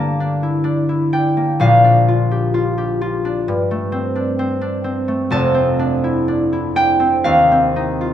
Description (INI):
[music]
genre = classical, solo harp piece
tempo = 64 BPM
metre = 4/4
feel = rubato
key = unclear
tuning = A4 = 440 Hz
[part]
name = concert harp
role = solo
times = 0.0-8.1 s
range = F1 to D6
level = -14 LUFS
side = equal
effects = none
[sound]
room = wet recital hall reverb, RT60 1.3 s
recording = none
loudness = -14 LUFS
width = side -10 dB against mid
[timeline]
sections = 0.0-8.1 A section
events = none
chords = 0.0 Gm; 1.6 Bb; 3.5 Gm11; 5.3 F6; 7.2 Eb69